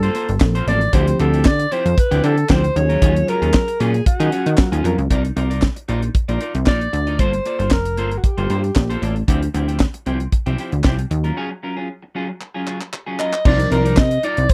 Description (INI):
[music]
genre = early-eighties boogie funk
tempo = 115 BPM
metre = 4/4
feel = straight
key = C dorian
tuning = A4 = 440 Hz
[part]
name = breathy alto saxophone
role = melody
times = 0.0-9.0, 13.2-14.5 s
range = F#4 to Eb5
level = -24 LUFS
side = equal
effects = slapback echo
[part]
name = clean electric guitar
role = riff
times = 0.0-14.5 s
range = F3 to Eb5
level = -29 LUFS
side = equal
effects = lush chorus
[part]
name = plucky analog bass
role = bass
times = 0.0-14.5 s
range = F1 to Eb3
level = -21 LUFS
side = equal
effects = none
[part]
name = tight funk drum kit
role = drums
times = 0.0-14.5 s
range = crash cymbal, handclaps, hi-hat, kick drum, snare drum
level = -19 LUFS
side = equal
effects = none
[part]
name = mellow synth brass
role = accompaniment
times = 0.4-5.0, 13.5-13.9 s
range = F3 to Bb4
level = -26 LUFS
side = equal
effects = chorus
[sound]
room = little or no reverb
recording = dry, close 1970s-style studio recording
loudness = -18 LUFS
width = mono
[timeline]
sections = 0.0-5.1 A section; 5.1-13.5 B section; 13.5-14.5 A section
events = break 11.4-13.5; drum fill 12.4-13.5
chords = 0.0 Gm11; 0.9 Dm11; 2.8 Ebm11; 5.1 Cm11; 7.2 Gm11; 9.3 Dm11; 11.1 Ebm11; 13.5 Cm11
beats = 0.41 | 0.93 1.46 1.98 2.50 | 3.02 3.54 4.06 4.59 | 5.11 5.63 6.15 6.67 | 7.19 7.72 8.24 8.76 | 9.28 9.80 10.32 10.85 | 11.37 11.89 12.41 12.93 | 13.46 13.98 14.50